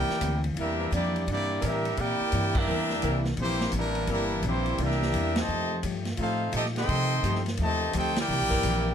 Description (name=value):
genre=jazz, big band swing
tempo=171 BPM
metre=4/4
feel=swing 65% on 8ths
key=unclear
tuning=A4 = 440 Hz
part: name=bright trumpet section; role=melody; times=0.0-8.9 s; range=G3 to C6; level=-29 LUFS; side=equal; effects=none
part: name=warm trombone section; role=second line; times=0.0-8.9 s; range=C3 to Bb4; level=-34 LUFS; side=right 2 dB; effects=none
part: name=picked steel-string acoustic guitar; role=accompaniment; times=0.0-8.9 s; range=C3 to G4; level=-35 LUFS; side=left 5 dB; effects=none
part: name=upright bass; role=bass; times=0.0-8.9 s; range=G1 to C3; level=-30 LUFS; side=equal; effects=none
part: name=vintage drum kit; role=drums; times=0.1-8.7 s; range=crash cymbal, hi-hat, kick drum, ride cymbal, snare drum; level=-35 LUFS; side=equal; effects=none
part: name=mellow saxophone section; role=sustained chords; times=0.8-4.2, 6.8-8.9 s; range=E3 to Bb4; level=-35 LUFS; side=equal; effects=none
room=light reverb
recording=close, detailed microphones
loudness=-25 LUFS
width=side -8 dB against mid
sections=0.0-8.9 A section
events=band accent 2.5, 5.3, 8.1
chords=0.0 C9; 5.5 F9; 8.3 C9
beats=0.21 0.56 0.92 | 1.27 1.62 1.97 2.32 | 2.67 3.02 3.38 3.73 | 4.08 4.43 4.78 5.13 | 5.48 5.83 6.18 6.53 | 6.88 7.24 7.59 7.94 | 8.29 8.64